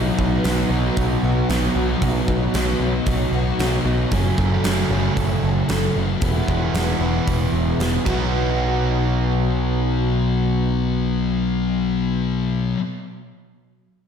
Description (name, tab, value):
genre	rock, shoegaze and dream pop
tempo	114 BPM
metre	4/4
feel	straight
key	B mixolydian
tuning	A4 = 440 Hz
part	warbly tape-like pad	sustained chords	0.0-4.1 s	D#4 to F#5	-33 LUFS	right 1 dB	none
part	picked plugged-in twelve-string acoustic guitar	arpeggios	0.0-12.8 s	E3 to A4	-30 LUFS	left 6 dB	ensemble chorus, diffuse ambient delay
part	biting overdriven guitar	riff	0.0-12.8 s	F#2 to E4	-25 LUFS	right 7 dB	reverse reverb
part	crunchy overdriven guitar	riff	0.0-4.1 s	B2 to D#4	-28 LUFS	right 1 dB	none
part	thick fuzz guitar	riff	0.0-12.8 s	E2 to B3	-23 LUFS	left 6 dB	distortion, analog chorus
part	growling picked electric bass	bass	0.0-12.7 s	E1 to B1	-23 LUFS	right 1 dB	overdrive
part	huge arena drum kit	drums	0.2-8.2 s	crash cymbal, hi-hat, kick drum, snare drum	-26 LUFS	right 1 dB	none
room	wet lush hall reverb, RT60 1.6 s, studio ambience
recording	dreamy mix soaked in reverb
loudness	-18 LUFS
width	side -7 dB against mid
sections	0.0-8.3 A section; 8.3-12.5 B section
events	none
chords	0.0 B; 4.1 F#m; 6.2 E; 8.1 B